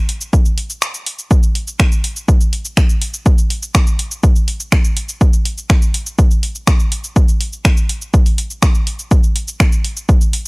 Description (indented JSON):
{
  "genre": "techno",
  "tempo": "123 BPM",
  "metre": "4/4",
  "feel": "straight",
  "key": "none",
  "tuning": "none",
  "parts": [
    { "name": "punchy analog drum machine", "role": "drums", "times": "0.1-10.5 s", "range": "finger snaps, hi-hat, shaker", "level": "-20 LUFS", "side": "equal", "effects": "overdrive, sidechain pumping on perc, small room ambience, sidechain pumping on hats" },
    { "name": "electronic kick drum", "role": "drums", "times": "0.3-10.2 s", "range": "none", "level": "-12 LUFS", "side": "equal", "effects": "overdrive, small room ambience" }
  ],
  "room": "little or no reverb",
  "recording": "dry, gritty hardware recording, transformer saturation",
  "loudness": "-13 LUFS",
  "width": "side -30 dB against mid",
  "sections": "0.0-10.5 A section",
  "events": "break 0.8-1.3",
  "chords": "none",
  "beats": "0.33 0.82 | 1.31 1.80 2.28 2.77 | 3.26 3.75 4.24 4.72 | 5.21 5.70 6.19 6.67 | 7.16 7.65 8.14 8.62 | 9.11 9.60 10.09"
}